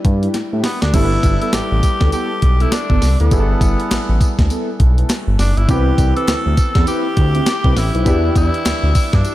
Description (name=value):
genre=R&B, new jack swing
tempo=101 BPM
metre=4/4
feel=swing 60% on 16ths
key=G major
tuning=A4 = 440 Hz
part: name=warm concert grand piano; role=accompaniment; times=0.0-9.3 s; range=E3 to B4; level=-25 LUFS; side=equal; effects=none
part: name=smooth synth bass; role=bass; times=0.0-9.2 s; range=F#1 to A2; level=-16 LUFS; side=equal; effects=none
part: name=clean 12-bit digital drum machine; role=drums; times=0.0-9.3 s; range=crash cymbal, hi-hat, kick drum, snare drum, tambourine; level=-17 LUFS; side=equal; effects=none
part: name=mellow synth brass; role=stabs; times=0.2-9.3 s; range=B3 to B4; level=-24 LUFS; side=equal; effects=chorus, diffuse ambient delay
part: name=group handclap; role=percussion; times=0.3-8.8 s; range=none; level=-37 LUFS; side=left 3 dB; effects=none
part: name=raspy tenor saxophone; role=melody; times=0.6-9.3 s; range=B3 to A4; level=-22 LUFS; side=left 1 dB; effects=diffuse ambient delay
room=moderate plate reverb, RT60 1.9 s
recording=dreamy mix soaked in reverb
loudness=-13 LUFS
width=side -15 dB against mid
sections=0.9-9.3 A section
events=drum fill 0.3-0.9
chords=0.0 Em7; 0.9 G69; 5.7 Cmaj7; 8.1 Em7